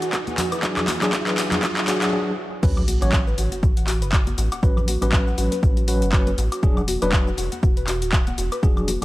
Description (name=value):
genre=deep house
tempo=120 BPM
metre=4/4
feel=swing 56% on 16ths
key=unclear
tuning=A4 = 440 Hz
part: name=warbly tape-like pad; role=sustained chords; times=0.0-2.1 s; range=E4 to E5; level=-36 LUFS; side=equal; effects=none
part: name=soft round pluck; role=arpeggios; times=0.0-9.0 s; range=F#4 to F#5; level=-30 LUFS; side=left 1 dB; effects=lush chorus, sidechain pumping, analog delay
part: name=punchy analog drum machine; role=drums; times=0.0-9.0 s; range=crash cymbal, handclaps, hi-hat, shaker, woodblock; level=-26 LUFS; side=left 1 dB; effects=overdrive
part: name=riser and sub drop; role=sound effects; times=0.0-4.6 s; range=none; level=-30 LUFS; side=right 1 dB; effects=none
part: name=warbly tape-like pad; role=texture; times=0.0-2.1 s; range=E3 to C#6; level=-36 LUFS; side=right 1 dB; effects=chorus, built-in reverb, sidechain pumping
part: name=electronic kick drum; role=drums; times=0.1-8.7 s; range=none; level=-20 LUFS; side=equal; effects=overdrive, high-pass filter on kick
part: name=congas and bongos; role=percussion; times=0.3-9.0 s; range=none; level=-33 LUFS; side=left 1 dB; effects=none
part: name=tine electric piano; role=stabs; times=0.6-9.0 s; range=F#3 to C#5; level=-25 LUFS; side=equal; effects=medium tremolo, vintage 12-bit sampler grit, sidechain pumping, analog delay
part: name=rubbery square bass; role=bass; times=2.6-9.0 s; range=D1 to A1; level=-24 LUFS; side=equal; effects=sidechain pumping
room=light reverb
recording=none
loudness=-18 LUFS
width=side -17 dB against mid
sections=0.0-2.6 A section; 2.6-9.0 B section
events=build-up 0.0-2.6; drum fill 0.0-2.1; riser 0.0-2.1; break 2.1-2.6; drop 2.6-9.0; impact 2.6-4.6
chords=0.0 E9; 2.4 N.C.; 2.6 A69; 6.6 E9